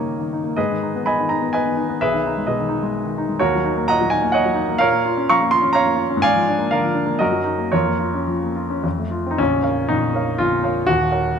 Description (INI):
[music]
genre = classical, romantic character piece for solo piano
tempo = 107-132 BPM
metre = 3/4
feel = rubato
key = G# minor, Bb minor from 3.4 s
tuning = A4 = 441 Hz
[part]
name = clear baby grand piano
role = solo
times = 0.0-11.4 s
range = Bb0 to Db6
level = -17 LUFS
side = equal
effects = none
[sound]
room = moderate scoring stage reverb, RT60 1.5 s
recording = close, detailed microphones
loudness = -17 LUFS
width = side -7 dB against mid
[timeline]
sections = 0.0-9.4 A section; 9.4-11.4 B section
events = none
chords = 0.0 D#7/G; 0.6 G#m; 2.0 G#m/B; 3.4 Ebm7; 4.8 Bbm; 6.2 Bb7/Ab; 7.2 Ebm/Gb; 7.7 Bbm/F; 8.8 F; 9.4 Bbm; 10.9 Ebm7